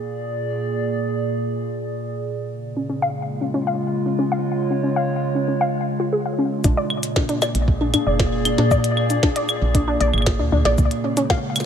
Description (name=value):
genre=IDM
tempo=116 BPM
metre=4/4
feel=straight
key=unclear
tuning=A4 = 440 Hz
part: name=warbly tape-like pad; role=sustained chords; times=0.0-11.7 s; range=Bb2 to D5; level=-23 LUFS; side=right 1 dB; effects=chorus, built-in reverb
part: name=warbly dusty pluck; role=arpeggios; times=2.8-11.4 s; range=Db4 to F5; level=-23 LUFS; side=left 2 dB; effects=chorus, ping-pong delay
part: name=woody FM bass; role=bass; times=6.6-10.9 s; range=F1 to Bb2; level=-21 LUFS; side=equal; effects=none
part: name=electronic kick drum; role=drums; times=6.6-11.4 s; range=none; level=-20 LUFS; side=equal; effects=overdrive
part: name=glitchy drum kit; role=drums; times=6.6-11.7 s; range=claves, hi-hat, shaker, snare drum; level=-25 LUFS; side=right 1 dB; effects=overdrive, low-pass filter on hats, low-pass filter on perc, low-pass filter on snare
room=light reverb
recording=none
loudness=-19 LUFS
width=side -8 dB against mid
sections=0.0-6.6 A section; 6.6-11.7 B section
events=none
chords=0.0 Bb7; 2.5 Db; 6.6 Bb7; 10.8 Db